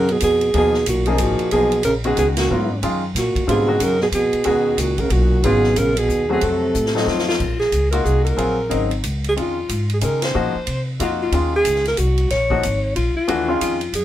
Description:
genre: modal jazz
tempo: 184 BPM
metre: 3/4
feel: swing 62% on 8ths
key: G# dorian, Bb minor from 7.4 s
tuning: A4 = 439 Hz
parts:
  - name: breathy alto saxophone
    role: melody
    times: 0.0-14.0 s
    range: F4 to Db5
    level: -20 LUFS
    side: right 1 dB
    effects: none
  - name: mellow trombone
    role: second line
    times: 0.0-7.1 s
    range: A#2 to C#3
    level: -24 LUFS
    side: right 2 dB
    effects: none
  - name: clear grand piano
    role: accompaniment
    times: 0.0-13.8 s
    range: C#3 to A#4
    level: -23 LUFS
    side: left 3 dB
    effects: none
  - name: upright bass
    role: bass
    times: 0.0-14.0 s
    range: G#1 to Db3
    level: -22 LUFS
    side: equal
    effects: none
  - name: swinging big-band drum kit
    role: drums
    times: 0.1-14.0 s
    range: crash cymbal, hi-hat, kick drum, ride cymbal, snare drum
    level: -28 LUFS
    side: right 1 dB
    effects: none
room: light reverb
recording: band playing live in one room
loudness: -16 LUFS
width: side -12 dB against mid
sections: 0.0-7.4 A section; 7.4-14.0 B section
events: band accent 2.3, 10.2; drum fill 6.7-7.4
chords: 0.0 G#m11; 6.4 F7b9; 7.4 Bbm11; 11.3 Ebm11

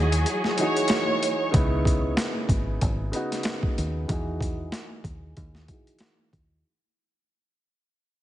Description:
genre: hip hop, boom-bap hip-hop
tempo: 94 BPM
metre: 4/4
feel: swing 57% on 16ths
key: unclear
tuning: A4 = 440 Hz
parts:
  - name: dark grand piano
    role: accompaniment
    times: 0.0-6.7 s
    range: C#3 to G#4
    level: -29 LUFS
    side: equal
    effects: high-pass filter, low-pass filter
  - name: rich studio string section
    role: sustained chords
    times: 0.0-1.5 s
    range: F#3 to D#5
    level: -30 LUFS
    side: equal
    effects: high-pass filter, low-pass filter
  - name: deep dub fingered electric bass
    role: bass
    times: 0.0-6.6 s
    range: G#1 to E2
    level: -27 LUFS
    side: equal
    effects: none
  - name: boom bap sampler-style drum kit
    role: drums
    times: 0.1-6.5 s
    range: hi-hat, kick drum, snare drum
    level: -27 LUFS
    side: equal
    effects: overdrive
  - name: warm symphonic violin section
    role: melody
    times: 0.6-1.5 s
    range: C#5 to C#6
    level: -29 LUFS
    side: right 2 dB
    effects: high-pass filter, low-pass filter, tape echo
room: light reverb, small room ambience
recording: heavily compressed radio sound, vinyl crackle, nothing above 10.4 kHz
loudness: -23 LUFS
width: side -13 dB against mid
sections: 0.0-1.5 A section; 1.5-6.6 B section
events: break 0.0-1.5; fade-out 1.5-6.6; filter sweep on grand piano 1.5-6.6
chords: 0.0 Emaj9; 1.5 C#m9; 4.1 Emaj9

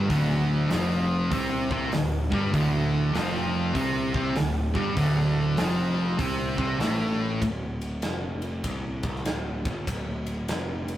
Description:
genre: stoner and doom metal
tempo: 98 BPM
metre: 4/4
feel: swing 64% on 8ths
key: D minor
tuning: A4 = 444 Hz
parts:
  - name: thick fuzz guitar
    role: riff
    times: 0.0-7.4 s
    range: D2 to C4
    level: -28 LUFS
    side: left 3 dB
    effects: distortion
  - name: thick fuzz guitar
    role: riff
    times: 0.0-7.4 s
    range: D2 to C4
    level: -28 LUFS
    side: right 3 dB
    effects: distortion
  - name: tight distorted guitar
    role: riff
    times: 0.0-7.4 s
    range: D2 to C4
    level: -30 LUFS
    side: equal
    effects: distortion
  - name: fuzz picked electric bass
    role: bass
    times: 0.0-11.0 s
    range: D1 to C2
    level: -32 LUFS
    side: equal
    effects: overdrive
  - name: big rock drum kit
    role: drums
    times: 0.1-11.0 s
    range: hi-hat, kick drum, ride cymbal, snare drum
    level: -32 LUFS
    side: equal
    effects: none
room: light reverb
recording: rough rehearsal-room recording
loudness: -24 LUFS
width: side -13 dB against mid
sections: 0.0-7.4 A section; 7.4-11.0 B section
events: none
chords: 0.0 Dm

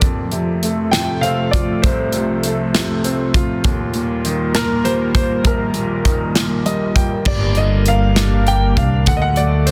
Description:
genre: six-eight pop ballad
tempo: 66 BPM (dotted quarters)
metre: 6/8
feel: straight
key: unclear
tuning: A4 = 440 Hz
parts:
  - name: bright upright piano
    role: accompaniment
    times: 0.0-9.7 s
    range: Bb1 to G5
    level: -25 LUFS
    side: equal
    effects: none
  - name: airy breathy pad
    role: sustained chords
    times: 0.0-9.7 s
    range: C3 to Bb4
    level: -24 LUFS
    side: equal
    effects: chorus
  - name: modern studio drum kit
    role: drums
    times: 0.0-9.7 s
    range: crash cymbal, hi-hat, kick drum, snare drum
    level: -21 LUFS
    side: equal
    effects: soft clipping on kick
  - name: clear concert grand piano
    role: melody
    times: 0.9-9.7 s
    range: Bb4 to G5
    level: -24 LUFS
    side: equal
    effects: tape echo
  - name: upright bass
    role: bass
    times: 7.3-9.7 s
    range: G1 to D2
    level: -18 LUFS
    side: equal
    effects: none
room: studio reverb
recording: dense, heavily limited modern master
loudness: -17 LUFS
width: mono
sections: 0.0-7.3 A section; 7.3-9.7 B section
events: upright piano fill 6.3-7.3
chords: 0.0 F; 3.6 Ebadd9; 7.3 Gm; 9.1 D

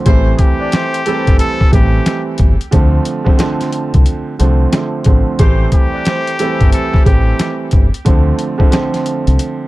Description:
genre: hip hop, boom-bap hip-hop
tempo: 90 BPM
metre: 4/4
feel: swing 62% on 16ths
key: A minor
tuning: A4 = 440 Hz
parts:
  - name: warm upright piano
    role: accompaniment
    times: 0.0-9.7 s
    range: D3 to C4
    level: -17 LUFS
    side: right 3 dB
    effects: cassette tape
  - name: mellow horn section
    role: stabs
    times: 0.1-7.0 s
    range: E3 to D5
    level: -24 LUFS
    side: left 2 dB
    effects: ping-pong delay
  - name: deep dub fingered electric bass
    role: bass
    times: 0.1-9.4 s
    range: G1 to D2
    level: -13 LUFS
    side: equal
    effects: none
  - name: boom bap sampler-style drum kit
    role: drums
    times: 0.1-9.6 s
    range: hi-hat, kick drum, snare drum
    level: -12 LUFS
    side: equal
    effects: none
  - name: trumpet with straight mute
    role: melody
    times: 0.4-7.6 s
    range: G4 to A4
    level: -21 LUFS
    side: left 2 dB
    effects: ping-pong delay
room: little or no reverb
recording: dark, warm production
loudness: -11 LUFS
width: side -18 dB against mid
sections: 0.0-9.7 A section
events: none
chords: 0.1 Am7; 2.7 Dm7; 5.4 Am7; 8.1 Dm7

